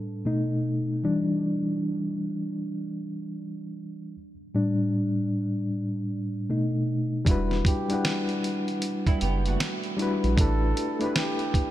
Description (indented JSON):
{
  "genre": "lo-fi hip hop",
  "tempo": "77 BPM",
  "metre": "4/4",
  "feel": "swing 61% on 16ths",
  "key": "E minor",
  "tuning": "A4 = 441 Hz",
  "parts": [
    { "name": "bright reed electric piano", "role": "accompaniment", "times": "0.0-11.7 s", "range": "A2 to F#5", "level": "-26 LUFS", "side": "left 1 dB", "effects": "fast tremolo, low-pass filter" },
    { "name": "saturated sub bass", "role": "bass", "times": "7.3-10.7 s", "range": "E1 to A#1", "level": "-26 LUFS", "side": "right 1 dB", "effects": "none" },
    { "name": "dusty soul sampler-style drum kit", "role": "drums", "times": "7.3-11.7 s", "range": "hi-hat, kick drum, snare drum", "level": "-26 LUFS", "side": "right 1 dB", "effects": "none" },
    { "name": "breathy flugelhorn", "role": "melody", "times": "7.7-11.7 s", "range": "G4 to B4", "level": "-35 LUFS", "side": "right 2 dB", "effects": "low-pass filter, diffuse ambient delay" },
    { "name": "flamenco guitar", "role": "second line", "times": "9.1-10.4 s", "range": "G3 to G4", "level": "-35 LUFS", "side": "right 3 dB", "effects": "lush chorus, low-pass filter, diffuse ambient delay" }
  ],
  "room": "moderate cathedral reverb, RT60 5.5 s",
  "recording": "dreamy mix soaked in reverb",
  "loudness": "-24 LUFS",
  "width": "side -13 dB against mid",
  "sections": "0.0-7.3 A section; 7.3-11.7 B section",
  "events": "reed electric piano solo 0.0-7.3",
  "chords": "0.2 B7; 1.0 Em7; 4.1 A7sus4; 6.5 B7; 7.3 Em9; 10.4 A9sus4"
}